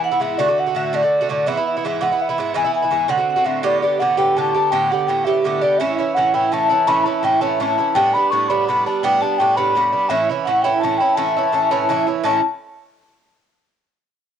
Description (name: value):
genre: celtic folk, Celtic jig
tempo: 111 BPM (dotted quarters)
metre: 6/8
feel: straight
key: A mixolydian from 3.6 s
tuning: A4 = 439 Hz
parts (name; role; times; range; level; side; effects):
- mellow hollow baroque flute; melody; 0.0-12.4 s; D5 to C#6; -18 LUFS; equal; cassette tape
- vibraphone with hard mallets; second line; 0.0-12.4 s; D5 to C#6; -23 LUFS; left 10 dB; none
- Irish bouzouki; accompaniment; 0.0-12.4 s; G#2 to G4; -20 LUFS; right 7 dB; none
room: moderate spring reverb, RT60 1.4 s, studio reverb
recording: home recording on cassette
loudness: -16 LUFS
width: side -8 dB against mid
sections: 0.0-3.6 A section; 3.6-12.2 B section; 12.2-13.3 C section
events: none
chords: 0.4 D; 1.5 E; 3.1 D7; 3.6 Gadd9; 5.8 A; 8.0 Gadd9; 10.1 A